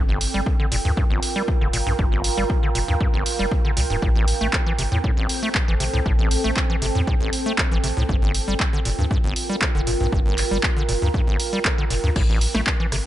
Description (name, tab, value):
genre	acid house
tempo	118 BPM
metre	4/4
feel	straight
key	unclear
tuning	A4 = 441 Hz
part	acid bass, square	riff	0.0-13.0 s	G1 to A3	-26 LUFS	equal	sidechain pumping, digital delay
part	warm sub bass	bass	0.0-13.0 s	D1 to E2	-24 LUFS	equal	sidechain pumping
part	deep dark ambient pad	texture	0.0-13.1 s	C4 to G5	-27 LUFS	right 2 dB	chorus, built-in reverb, sidechain pumping
part	punchy analog drum machine	drums	0.2-13.0 s	crash cymbal, handclaps, hi-hat, rim click, snare drum	-26 LUFS	right 1 dB	none
part	electronic kick drum	drums	0.5-12.8 s	none	-22 LUFS	equal	none
room	light reverb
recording	nothing above 11.0 kHz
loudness	-19 LUFS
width	side -13 dB against mid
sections	0.0-13.1 A section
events	none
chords	0.0 Gm7; 4.0 Am7; 8.1 Gm7; 12.2 Am7